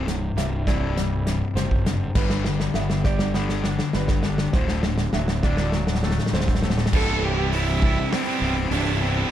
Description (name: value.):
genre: post-rock.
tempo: 101 BPM.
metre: 4/4.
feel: straight.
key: C lydian.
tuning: A4 = 440 Hz.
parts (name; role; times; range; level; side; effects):
felt-muted upright piano; arpeggios; 0.0-6.9 s; B4 to E5; -34 LUFS; right 8 dB; slapback echo.
twangy electric guitar; arpeggios; 0.0-6.9 s; C2 to G4; -33 LUFS; right 1 dB; wide subtle chorus, slapback echo.
thick fuzz guitar; riff; 0.0-9.3 s; C2 to E4; -26 LUFS; left 5 dB; distortion.
fuzz fingered electric bass; bass; 0.0-9.2 s; C1 to G1; -26 LUFS; right 1 dB; overdrive.
loose indie drum kit; drums; 0.1-8.8 s; crash cymbal, hi-hat, kick drum, snare drum; -25 LUFS; equal; none.
clear cello; melody; 6.9-9.3 s; C4 to A4; -27 LUFS; right 5 dB; slapback echo.
distorted electric guitar; riff; 6.9-9.3 s; C2 to E4; -28 LUFS; right 17 dB; overdrive.
room: studio ambience.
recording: dark, warm production.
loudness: -20 LUFS.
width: side -11 dB against mid.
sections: 0.0-6.9 A section; 6.9-9.3 B section.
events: build-up 0.0-6.9; drum fill 0.0-6.9.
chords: 0.0 C; 2.2 G; 4.5 D7; 6.9 Cmaj7.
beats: 0.38 0.97 1.57 | 2.17 2.76 3.36 3.95 | 4.55 5.14 5.74 6.33 | 6.93 7.52 8.12 8.71 | 9.31.